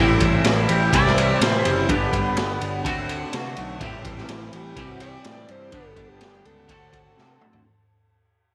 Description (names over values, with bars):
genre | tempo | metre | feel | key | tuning
psychedelic rock | 125 BPM | 4/4 | straight | unclear | A4 = 443 Hz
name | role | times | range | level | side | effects
string machine, full ensemble | sustained chords | 0.0-7.6 s | G4 to G5 | -40 LUFS | equal | none
twangy electric guitar | riff | 0.0-7.6 s | G2 to A4 | -26 LUFS | equal | flanger, double-tracked
fuzz picked electric bass | bass | 0.0-7.6 s | F#1 to C3 | -29 LUFS | equal | overdrive
raw garage drum kit | drums | 0.2-7.6 s | kick drum, ride cymbal, snare drum, toms | -27 LUFS | equal | none
overdriven synth lead | melody | 0.7-7.4 s | G4 to D5 | -30 LUFS | equal | distortion, phaser, tape echo
room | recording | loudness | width
light reverb, small room ambience | none | -21 LUFS | mono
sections
0.0-7.7 A section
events
fade-out 0.0-7.7; drum fill 7.2-7.7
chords
0.0 Am7; 0.9 C; 1.9 G; 2.9 D7; 3.8 Am7; 4.8 C; 5.7 G; 6.7 D7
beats
0.46 0.94 1.42 | 1.90 2.38 2.86 3.34 | 3.82 4.30 4.78 5.26 | 5.74 6.22 6.70 7.18